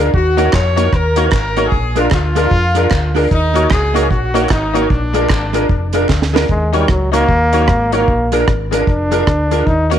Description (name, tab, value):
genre	ska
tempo	151 BPM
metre	4/4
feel	swing 62% on 8ths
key	Eb minor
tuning	A4 = 444 Hz
part	archtop guitar, miked and amplified	accompaniment	0.0-10.0 s	Gb3 to Bb4	-20 LUFS	right 10 dB	slapback echo
part	honky-tonk upright piano	stabs	0.0-10.0 s	D4 to Db5	-20 LUFS	left 9 dB	slapback echo
part	fingered electric bass	bass	0.0-10.0 s	F1 to F2	-18 LUFS	equal	none
part	clear horn section	melody	0.1-6.1 s	D4 to Db5	-18 LUFS	left 1 dB	none
part	deep reggae drum kit	drums	0.1-10.0 s	hi-hat, kick drum, rim click, snare drum	-17 LUFS	right 1 dB	none
part	group handclap	percussion	0.5-6.2 s	none	-28 LUFS	equal	slapback echo
part	clear trombone	melody	6.5-9.9 s	Gb3 to Eb4	-16 LUFS	equal	none
room	light reverb, small room ambience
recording	1960s-style stereo with parts hard left and right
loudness	-12 LUFS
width	side -10 dB against mid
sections	0.0-6.5 A section; 6.5-10.0 B section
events	drum fill 6.1-6.5; trombone solo 6.5-10.0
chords	0.1 Ebm7; 1.7 Bb7; 3.3 Ebm7; 4.9 Bb7; 6.5 Ebm7; 8.1 Bb7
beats	| 0.14 0.54 0.93 1.33 | 1.72 2.12 2.52 2.91 | 3.31 3.71 4.11 4.50 | 4.90 5.30 5.70 6.10 | 6.49 6.89 7.29 7.69 | 8.08 8.48 8.88 9.27 | 9.67